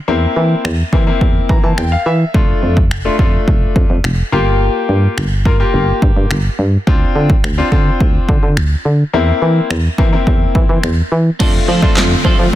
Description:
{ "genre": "dance-pop", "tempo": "106 BPM", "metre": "4/4", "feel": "straight", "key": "F major", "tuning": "A4 = 438 Hz", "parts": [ { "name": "bright concert grand piano", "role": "accompaniment", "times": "0.1-12.6 s", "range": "A3 to Bb5", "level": "-18 LUFS", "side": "left 4 dB", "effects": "sidechain pumping" }, { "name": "solid FM bass", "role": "bass", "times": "0.1-12.5 s", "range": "F1 to F3", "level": "-15 LUFS", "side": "equal", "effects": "sidechain pumping" }, { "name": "punchy analog drum machine", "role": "drums", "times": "0.6-12.4 s", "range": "crash cymbal, finger snaps, handclaps, kick drum, snare drum", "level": "-14 LUFS", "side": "equal", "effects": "soft clipping on snare" }, { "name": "supersaw chords", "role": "sustained chords", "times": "11.4-12.6 s", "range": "D3 to F4", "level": "-20 LUFS", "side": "equal", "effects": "phaser, sidechain pumping" }, { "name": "twelve-string electric guitar", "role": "riff", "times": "11.4-12.6 s", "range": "C4 to A4", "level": "-21 LUFS", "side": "right 7 dB", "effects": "lush chorus" } ], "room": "little or no reverb", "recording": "dense, heavily limited modern master", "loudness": "-11 LUFS", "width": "side -14 dB against mid", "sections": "0.0-11.4 A section; 11.4-12.6 B section", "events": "grand piano fill 1.2-2.3", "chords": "0.1 C7/E; 2.3 F6; 4.3 Gm7; 6.9 Dm7; 9.1 C7/E; 11.4 F6" }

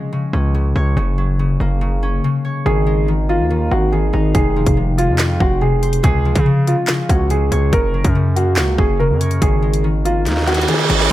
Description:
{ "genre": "hip hop, drill", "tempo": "142 BPM", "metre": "4/4", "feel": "half-time", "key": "unclear", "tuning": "A4 = 440 Hz", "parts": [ { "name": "concert harp", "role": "accompaniment", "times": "0.0-11.1 s", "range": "C3 to Db5", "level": "-20 LUFS", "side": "left 2 dB", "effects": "none" }, { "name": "distorted 808-style bass", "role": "bass", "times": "0.3-11.1 s", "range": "F1 to Db3", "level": "-18 LUFS", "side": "equal", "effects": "distortion" }, { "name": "dark grand piano", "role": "melody", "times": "2.7-11.1 s", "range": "F4 to Bb4", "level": "-20 LUFS", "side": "right 1 dB", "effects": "none" }, { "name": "drill drum kit", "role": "drums", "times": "4.3-11.1 s", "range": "handclaps, hi-hat, kick drum, snare drum", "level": "-18 LUFS", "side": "equal", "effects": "none" }, { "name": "reverse cymbal", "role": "sound effects", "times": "10.4-11.1 s", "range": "none", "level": "-19 LUFS", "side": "right 8 dB", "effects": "none" } ], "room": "little or no reverb", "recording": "none", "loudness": "-14 LUFS", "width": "side -14 dB against mid", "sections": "0.0-11.1 A section", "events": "break 0.0-2.7; drum fill 10.3-11.1; reverse cymbal 10.4-11.1", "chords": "0.0 Db5; 1.0 Gb; 2.7 Abadd9; 4.3 Fm; 6.0 Db; 7.7 Gb; 9.4 Abadd9" }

